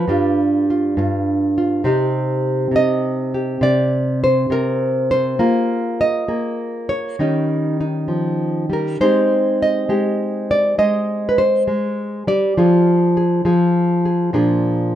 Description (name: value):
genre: solo jazz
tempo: 68 BPM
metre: 4/4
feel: swing 68% on 8ths, rubato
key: unclear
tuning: A4 = 440 Hz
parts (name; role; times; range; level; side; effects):
- nylon-string guitar; solo; 0.0-15.0 s; G2 to Eb5; -16 LUFS; equal; none
room: moderate studio reverb, RT60 0.8 s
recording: minimal, uncompressed stereo recording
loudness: -16 LUFS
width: side -11 dB against mid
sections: 0.0-15.0 A section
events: none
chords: 0.1 G7; 1.9 Cm7; 5.4 Bb5; 7.2 Eb7; 9.0 Abmaj7; 12.6 Fm; 14.3 Bb7